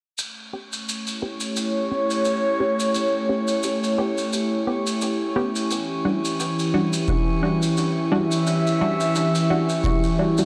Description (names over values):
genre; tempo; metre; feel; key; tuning
ambient dub; 87 BPM; 4/4; swing 56% on 16ths; unclear; A4 = 440 Hz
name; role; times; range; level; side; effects
airy breathy pad; sustained chords; 0.9-10.4 s; E3 to E5; -24 LUFS; equal; chorus
shaker; drums; 0.2-10.4 s; none; -33 LUFS; equal; dub echo
drifting glass-harmonics texture; texture; 0.8-10.4 s; C#4 to C#6; -34 LUFS; equal; chorus, built-in reverb
filtered dub chord stab; stabs; 0.5-10.4 s; G3 to G4; -28 LUFS; equal; phaser, vintage 12-bit sampler grit, dub echo
electronic kick drum; drums; 7.1-10.0 s; none; -26 LUFS; equal; none
room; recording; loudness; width
digital ambience; echo-heavy mix; -23 LUFS; mono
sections
0.2-10.4 A section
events
filter sweep on synth stab 0.2-10.4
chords
0.2 A7; 5.7 Em7